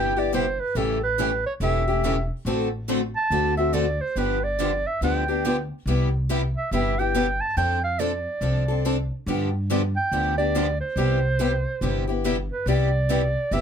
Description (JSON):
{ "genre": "acoustic string swing (jazz manouche)", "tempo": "141 BPM", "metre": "4/4", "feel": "swing 62% on 8ths", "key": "C major", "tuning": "A4 = 440 Hz", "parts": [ { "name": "warm clarinet", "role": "melody", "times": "0.0-13.6 s", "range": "A4 to A5", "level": "-25 LUFS", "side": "right 3 dB", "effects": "none" }, { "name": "picked steel-string acoustic guitar", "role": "accompaniment", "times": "0.0-13.6 s", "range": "C3 to A4", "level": "-26 LUFS", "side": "left 6 dB", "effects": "none" }, { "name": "picked steel-string acoustic guitar", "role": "accompaniment", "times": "0.0-13.6 s", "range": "C3 to A4", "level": "-30 LUFS", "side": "right 6 dB", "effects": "none" }, { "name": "upright bass", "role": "bass", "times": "0.0-13.6 s", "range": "E1 to G2", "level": "-26 LUFS", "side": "equal", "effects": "none" } ], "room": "light reverb", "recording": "none", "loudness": "-21 LUFS", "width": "side -8 dB against mid", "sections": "0.0-12.7 A section", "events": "none", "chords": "0.0 Cmaj7; 0.8 A7; 2.5 D7/A; 4.2 G7; 5.9 Cmaj7; 7.6 F6; 9.3 G7; 11.0 Cmaj7", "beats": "0.33 | 0.76 1.18 1.61 2.03 | 2.46 2.88 3.31 3.73 | 4.16 4.59 5.01 5.44 | 5.86 6.29 6.71 7.14 | 7.56 7.99 8.41 8.84 | 9.26 9.69 10.12 10.54 | 10.96 11.39 11.81 12.24 | 12.67 13.09 13.52" }